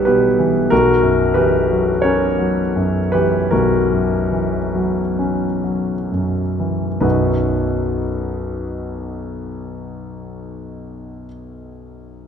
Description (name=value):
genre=classical, romantic nocturne for solo piano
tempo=30-47 BPM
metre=4/4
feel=rubato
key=unclear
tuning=A4 = 440 Hz
part: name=clear concert grand piano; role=solo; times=0.0-12.3 s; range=B1 to C#5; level=-16 LUFS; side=equal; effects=none
room=moderate concert hall reverb, RT60 1.9 s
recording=dark, warm production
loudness=-15 LUFS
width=side -7 dB against mid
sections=0.0-7.0 A section; 7.0-12.3 B section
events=slowing down 0.0-7.0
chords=0.0 Em/B; 0.7 F#7/B; 7.0 B